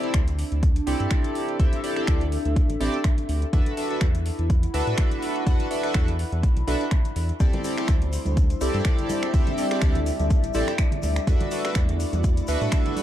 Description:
deep house; 124 BPM; 4/4; swing 55% on 16ths; A4 = 441 Hz
chorused polysynth; stabs; 0.0-13.0 s; C4 to F#5; -28 LUFS; right 1 dB; sidechain pumping, tape echo
deep house drum kit; drums; 0.0-13.0 s; finger snaps, hi-hat; -35 LUFS; equal; overdrive
warbly tape-like pad; texture; 0.4-13.0 s; D4 to B5; -32 LUFS; left 2 dB; chorus, built-in reverb, sidechain pumping
round analog bass; bass; 0.1-12.7 s; A1 to A2; -26 LUFS; equal; sidechain pumping
electronic kick drum; drums; 0.1-12.8 s; -21 LUFS; equal; overdrive
airy breathy pad; sustained chords; 7.4-13.0 s; G3 to D5; -34 LUFS; left 1 dB; chorus, vintage 12-bit sampler grit, sidechain pumping
tube shaker; percussion; 7.4-13.0 s; -43 LUFS; left 6 dB
congas and bongos; percussion; 7.5-13.0 s; -35 LUFS; right 2 dB; sidechain pumping on perc
little or no reverb; dark, warm production; -21 LUFS; side -12 dB against mid
0.0-13.0 A section
0.0 D9sus4; 3.5 E9sus4; 7.4 D9sus4; 11.3 E9sus4

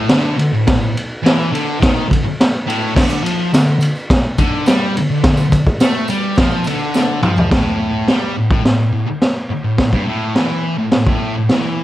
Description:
garage rock duo or trio; 105 BPM; 4/4; straight; A4 = 441 Hz
thick fuzz guitar; riff; 0.0-11.8 s; G2 to A3; -17 LUFS; equal; distortion
raw garage drum kit; drums; 0.1-11.6 s; crash cymbal, kick drum, ride cymbal, snare drum, toms; -15 LUFS; equal
tambourine; percussion; 3.1-7.4 s; -36 LUFS; right 4 dB
light reverb; cassette tape; -13 LUFS; side -14 dB against mid
0.0-7.5 A section; 7.5-11.8 B section
drum fill 6.9-7.5

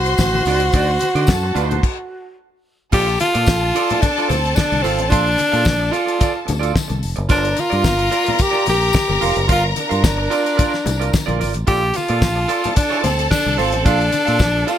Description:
disco; 110 BPM; 4/4; straight; A4 = 440 Hz
breathy tenor saxophone; melody; 0.0-14.8 s; C4 to G4; -19 LUFS; equal
clear symphonic string section; second line; 0.0-14.8 s; A4 to C6; -23 LUFS; left 2 dB
fingered electric bass; bass; 0.0-14.6 s; F1 to D3; -21 LUFS; equal
tambourine; percussion; 0.0-14.8 s; -35 LUFS; left 5 dB
electric guitar at the edge of break-up; accompaniment; 0.1-14.8 s; Eb4 to F5; -24 LUFS; right 8 dB; lush chorus
damped 70s drum kit; drums; 0.1-14.8 s; crash cymbal, hi-hat, kick drum, snare drum; -19 LUFS; equal
congas; percussion; 0.2-14.5 s; -28 LUFS; left 5 dB
studio ambience; -15 LUFS; side -10 dB against mid
0.0-2.9 A section; 2.9-14.8 B section
stop 1.8-2.9
0.0 D7b9; 2.9 Bbmaj7; 7.3 Gm7; 11.7 Bbmaj7

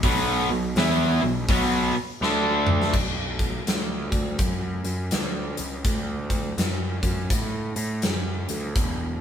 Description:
blues rock power trio and southern rock; 82 BPM; 4/4; swing 63% on 8ths; B minor; A4 = 436 Hz
crunchy overdriven guitar; riff; 0.0-2.9 s; B2 to E4; -22 LUFS; equal
fuzz picked electric bass; bass; 0.0-9.2 s; E1 to A2; -28 LUFS; equal; overdrive
big rock drum kit; drums; 0.0-9.0 s; crash cymbal, hi-hat, kick drum, snare drum, toms; -26 LUFS; equal
moderate stone room reverb, RT60 1.0 s; band playing live in one room; -22 LUFS; side -9 dB against mid
0.0-2.9 A section; 2.9-9.2 B section
drum fill 2.2-2.9
0.0 B5; 2.2 D5; 2.9 Bm; 5.9 D

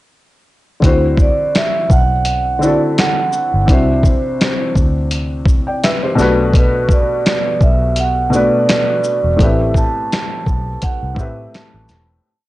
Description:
lo-fi hip hop; 84 BPM; 4/4; swing 56% on 16ths; A dorian; A4 = 441 Hz
felt-muted upright piano; accompaniment; 0.8-12.3 s; A2 to G5; -18 LUFS; left 2 dB; low-pass filter
vintage muted fingered electric bass; bass; 0.8-12.2 s; E1 to A2; -18 LUFS; equal
dusty soul sampler-style drum kit; drums; 0.8-12.1 s; finger snaps, hi-hat, kick drum, shaker, snare drum; -15 LUFS; equal
vibraphone with soft mallets; melody; 0.9-12.1 s; B4 to A5; -18 LUFS; right 3 dB; low-pass filter, analog delay
light reverb, digital ambience; dry, gritty hardware recording, transformer saturation, cassette tape, nothing above 11.0 kHz; -12 LUFS; side -17 dB against mid
0.8-12.2 A section
fade-out 9.4-12.2
0.8 D13; 3.7 Cadd9; 6.2 Bm7; 9.4 Am9

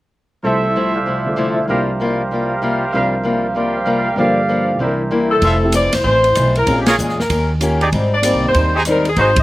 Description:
jazz, big band swing; 192 BPM; 4/4; swing 63% on 8ths; F major; A4 = 440 Hz
picked acoustic archtop guitar; accompaniment; 0.4-9.4 s; F2 to G4; -20 LUFS; left 2 dB; slapback echo
warm concert grand piano; accompaniment; 0.4-8.7 s; C2 to G5; -22 LUFS; right 1 dB
warm trumpet section; stabs; 0.4-9.3 s; C4 to D6; -19 LUFS; right 2 dB
clear saxophone section; melody; 5.3-9.4 s; G4 to Eb5; -16 LUFS; left 1 dB
upright bass; bass; 5.4-9.4 s; E1 to E2; -18 LUFS; equal
open jazz drum kit; drums; 5.4-9.4 s; hi-hat, kick drum, ride cymbal, rim click, snare drum; -23 LUFS; equal
little or no reverb; recorded outdoors, with no room sound; -14 LUFS; side -17 dB against mid
0.4-5.4 A section; 5.4-9.4 B section
band accent 6.8
0.4 Fmaj7/C; 1.7 C7sus4; 4.2 Gm7; 4.8 C7; 5.4 Fmaj7; 6.7 Bbm7; 7.3 Eb7; 7.9 Abmaj7

